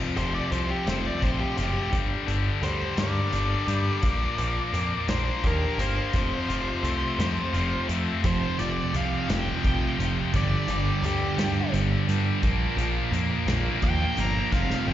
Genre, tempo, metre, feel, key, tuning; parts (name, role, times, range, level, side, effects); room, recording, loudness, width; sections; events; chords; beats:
quiet-loud alternative rock; 57 BPM (dotted quarters); 6/8; straight; A4 = 440 Hz
twelve-string electric guitar; arpeggios; 0.0-8.2 s; F2 to G4; -33 LUFS; right 1 dB; plate reverb, slapback echo
heavy high-gain guitar; riff; 0.0-14.9 s; F2 to Bb3; -30 LUFS; left 8 dB; distortion, slapback echo
growling picked electric bass; bass; 0.0-14.9 s; F1 to G2; -28 LUFS; equal; overdrive
octave-fuzz lead guitar; melody; 0.2-14.9 s; G4 to Bb5; -32 LUFS; right 1 dB; distortion, plate reverb, slapback echo, tape echo
loose indie drum kit; drums; 0.2-14.9 s; hi-hat, kick drum, snare drum; -30 LUFS; equal
thick fuzz guitar; riff; 8.2-14.9 s; F2 to Bb3; -28 LUFS; right 6 dB; distortion, slapback echo
light reverb; live gig heard through the venue's PA, recital hall reverb, nothing above 7.5 kHz; -23 LUFS; side -12 dB against mid
0.0-14.9 A section
lead electric guitar solo 0.0-14.9; drum fill 14.5-14.9
0.0 F; 1.9 Gm; 4.0 Bb6; 6.1 F; 8.2 F5; 10.3 G5; 12.4 Bb5
0.87 | 1.93 2.98 | 4.03 5.08 | 6.13 7.19 | 8.24 9.29 | 10.34 11.39 | 12.43 13.48 | 14.53